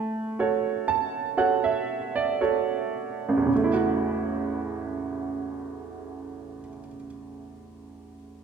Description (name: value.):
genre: folk.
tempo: 54-63 BPM.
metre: 4/4.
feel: straight.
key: A major.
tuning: A4 = 440 Hz.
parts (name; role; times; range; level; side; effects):
flamenco guitar; melody; 0.0-2.4 s; A5; -39 LUFS; right 5 dB; none.
bright upright piano; accompaniment; 0.0-8.4 s; A1 to A5; -25 LUFS; right 4 dB; none.
room: wet large studio reverb, RT60 1.2 s.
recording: none.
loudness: -24 LUFS.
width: side -6 dB against mid.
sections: 0.0-3.5 A section; 3.5-7.9 B section.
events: slowing down 0.0-3.5.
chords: 0.0 A6.